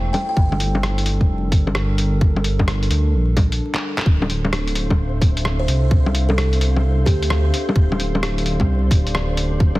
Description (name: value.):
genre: future garage.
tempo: 130 BPM.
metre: 4/4.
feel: swing 65% on 16ths.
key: D minor.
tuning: A4 = 440 Hz.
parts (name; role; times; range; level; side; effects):
dark analog pad; sustained chords; 0.0-9.8 s; G3 to F5; -29 LUFS; equal; chorus, vintage 12-bit sampler grit, sidechain pumping.
dark detuned saw bass; bass; 0.0-9.8 s; D1 to D2; -19 LUFS; equal; sidechain pumping.
buzzing kalimba; melody; 0.1-0.3, 5.6-7.7 s; G4 to G5; -28 LUFS; right 1 dB; dub echo.
lo-fi sampler-style drum kit; drums; 0.1-9.8 s; bongos, handclaps, hi-hat, rim click; -23 LUFS; left 1 dB; small room ambience, soft clipping on snare.
electronic kick drum; drums; 0.4-9.7 s; none; -16 LUFS; equal; small room ambience.
flickering grainy texture; texture; 4.3-9.8 s; C4 to C5; -33 LUFS; right 1 dB; built-in reverb.
room: digital ambience.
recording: dense, heavily limited modern master, vinyl crackle.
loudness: -16 LUFS.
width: side -18 dB against mid.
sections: 0.0-4.1 A section; 4.1-9.8 B section.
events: break 3.6-4.1; drum fill 3.7-4.1.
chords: 0.4 Gmadd9; 4.1 Dm9.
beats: | 0.37 0.83 1.29 1.76 | 2.22 2.68 3.14 3.60 | 4.06 4.53 4.99 5.45 | 5.91 6.37 6.83 7.29 | 7.76 8.22 8.68 9.14 | 9.60.